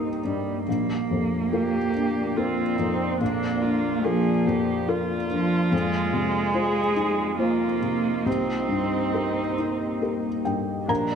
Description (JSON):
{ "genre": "neoclassical piano and strings", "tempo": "71 BPM", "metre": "3/4", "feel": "rubato", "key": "C minor", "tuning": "A4 = 440 Hz", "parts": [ { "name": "felt-muted upright piano", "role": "accompaniment", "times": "0.0-11.2 s", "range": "Bb1 to Bb5", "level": "-27 LUFS", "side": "left 4 dB", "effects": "none" }, { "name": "muted viola", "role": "accompaniment", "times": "0.0-11.2 s", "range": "D4 to Ab4", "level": "-31 LUFS", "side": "equal", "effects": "none" }, { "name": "deep dark ambient pad", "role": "sustained chords", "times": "0.0-11.2 s", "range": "Bb3 to Eb5", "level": "-30 LUFS", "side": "equal", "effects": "chorus, built-in reverb" }, { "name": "muted cello", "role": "second line", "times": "0.2-11.2 s", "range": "F3 to C4", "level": "-26 LUFS", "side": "right 4 dB", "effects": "analog delay" }, { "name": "folk marimba with medium hard mallets", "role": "arpeggios", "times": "10.9-11.2 s", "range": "Bb4 to D5", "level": "-28 LUFS", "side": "right 1 dB", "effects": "none" } ], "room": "wet plate reverb, RT60 2.8 s", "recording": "dreamy mix soaked in reverb", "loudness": "-22 LUFS", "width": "side -7 dB against mid", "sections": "0.0-10.9 A section", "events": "none", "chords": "0.0 Cm7; 0.7 Bb; 5.7 Fm7; 8.3 Cm7", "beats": "| 0.67 1.52 2.36 | 3.21 4.05 4.89 | 5.72 6.55 7.40 | 8.27 9.14 10.02 | 10.89" }